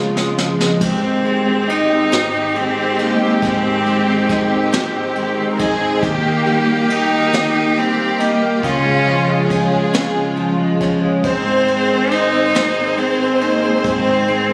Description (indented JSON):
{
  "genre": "six-eight pop ballad",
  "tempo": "46 BPM (dotted quarters)",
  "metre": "6/8",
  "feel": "straight",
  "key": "Ab major",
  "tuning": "A4 = 440 Hz",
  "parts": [
    { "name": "direct-recorded clean electric guitar", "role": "accompaniment", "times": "0.0-14.5 s", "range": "Ab2 to Eb4", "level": "-21 LUFS", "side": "equal", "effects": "double-tracked" },
    { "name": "rich studio string section", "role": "sustained chords", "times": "0.0-14.5 s", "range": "Db2 to Ab4", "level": "-26 LUFS", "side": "equal", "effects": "none" },
    { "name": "jazz brush drum kit", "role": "drums", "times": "0.2-14.5 s", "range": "crash cymbal, kick drum, ride cymbal, snare drum", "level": "-27 LUFS", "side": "equal", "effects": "none" },
    { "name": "clear cello", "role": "melody", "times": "0.8-14.5 s", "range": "Bb3 to Eb4", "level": "-21 LUFS", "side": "equal", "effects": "none" },
    { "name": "warm chamber violin section", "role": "second line", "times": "0.8-14.5 s", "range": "F4 to C5", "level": "-23 LUFS", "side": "equal", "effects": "none" }
  ],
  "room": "light reverb, small room ambience",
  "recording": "recorded on a phone in the room, club reverb, compression",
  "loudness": "-16 LUFS",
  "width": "mono",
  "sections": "0.8-14.5 A section",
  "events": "drum fill 0.0-0.8",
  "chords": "0.0 Db; 0.8 Ab; 6.0 Eb; 8.6 Db; 11.2 Ab"
}